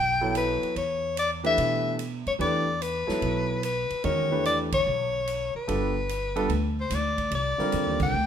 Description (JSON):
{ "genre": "modal jazz", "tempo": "146 BPM", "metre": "4/4", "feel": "swing 67% on 8ths", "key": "E dorian", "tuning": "A4 = 438 Hz", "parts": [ { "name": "bright soprano saxophone", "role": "melody", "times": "0.0-8.3 s", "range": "B4 to G5", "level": "-26 LUFS", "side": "left 3 dB", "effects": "none" }, { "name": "upright bass", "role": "bass", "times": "0.0-8.3 s", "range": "G1 to B2", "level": "-31 LUFS", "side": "right 1 dB", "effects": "none" }, { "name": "warm grand piano", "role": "accompaniment", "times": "0.2-8.1 s", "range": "D3 to C#5", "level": "-29 LUFS", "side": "right 2 dB", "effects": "none" }, { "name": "swinging big-band drum kit", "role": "drums", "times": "0.3-8.1 s", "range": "crash cymbal, hi-hat, kick drum, ride cymbal, snare drum", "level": "-38 LUFS", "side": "right 4 dB", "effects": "none" } ], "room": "moderate large studio reverb, RT60 1.2 s", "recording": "minimal, uncompressed stereo recording", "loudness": "-24 LUFS", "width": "side -8 dB against mid", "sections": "0.0-7.3 A section", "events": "band accent 4.7, 7.9", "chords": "0.0 Em11; 5.7 G7; 7.3 Cm11" }